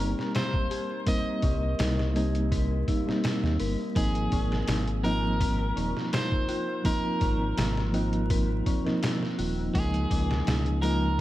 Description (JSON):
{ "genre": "trip hop", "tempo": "83 BPM", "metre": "4/4", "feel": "straight", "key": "unclear", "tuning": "A4 = 444 Hz", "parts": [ { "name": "electric guitar at the edge of break-up", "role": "melody", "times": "0.0-11.2 s", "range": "Ab4 to Eb5", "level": "-34 LUFS", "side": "right 1 dB", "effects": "vintage 12-bit sampler grit, dub echo" }, { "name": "mellow reed electric piano", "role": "accompaniment", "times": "0.0-11.2 s", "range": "F3 to Eb4", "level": "-30 LUFS", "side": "right 1 dB", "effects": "fast tremolo, tape echo" }, { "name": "dark detuned synth bell", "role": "arpeggios", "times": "0.0-11.2 s", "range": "C4 to Bb4", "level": "-35 LUFS", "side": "left 3 dB", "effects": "chorus, dub echo" }, { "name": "round analog bass", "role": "bass", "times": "0.0-11.2 s", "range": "Eb1 to Eb2", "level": "-28 LUFS", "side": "equal", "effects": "tube saturation" }, { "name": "trip hop sampler-style drum kit", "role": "drums", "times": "0.2-11.0 s", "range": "hi-hat, kick drum, snare drum", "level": "-30 LUFS", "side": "equal", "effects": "none" } ], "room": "light reverb", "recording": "vinyl crackle", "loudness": "-25 LUFS", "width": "side -15 dB against mid", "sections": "0.0-11.2 A section", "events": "none", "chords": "0.0 Cm7; 4.0 Ab69; 9.7 Db69", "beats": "0.35 | 1.07 1.79 2.51 3.24 | 3.96 4.68 5.41 6.13 | 6.85 7.58 8.30 9.02 | 9.74 10.47 11.19" }